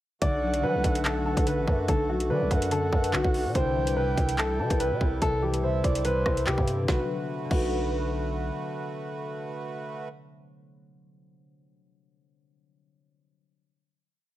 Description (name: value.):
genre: hip hop, drill.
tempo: 144 BPM.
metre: 4/4.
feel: half-time.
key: B phrygian.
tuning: A4 = 437 Hz.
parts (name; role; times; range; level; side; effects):
dark baby grand piano; melody; 0.2-8.1 s; F#4 to D5; -30 LUFS; equal; analog delay.
breathy flute-like synth lead; second line; 0.2-8.1 s; B4 to G5; -34 LUFS; right 5 dB; chorus, analog delay.
concert harp; accompaniment; 0.2-11.3 s; C3 to D4; -32 LUFS; left 4 dB; analog delay.
accordion; sustained chords; 0.2-10.1 s; C3 to B4; -37 LUFS; right 2 dB; none.
growling 808-style bass; bass; 0.2-8.5 s; A1 to F#3; -30 LUFS; equal; none.
drill drum kit; drums; 0.2-7.6 s; crash cymbal, handclaps, hi-hat, kick drum, rim click, snare drum; -27 LUFS; equal; none.
room: small room ambience.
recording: echo-heavy mix.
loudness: -24 LUFS.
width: side -14 dB against mid.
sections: 0.2-6.9 hook; 6.9-10.2 final chord.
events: none.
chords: 0.2 Bm7; 3.5 Cmaj7; 6.9 Bm7.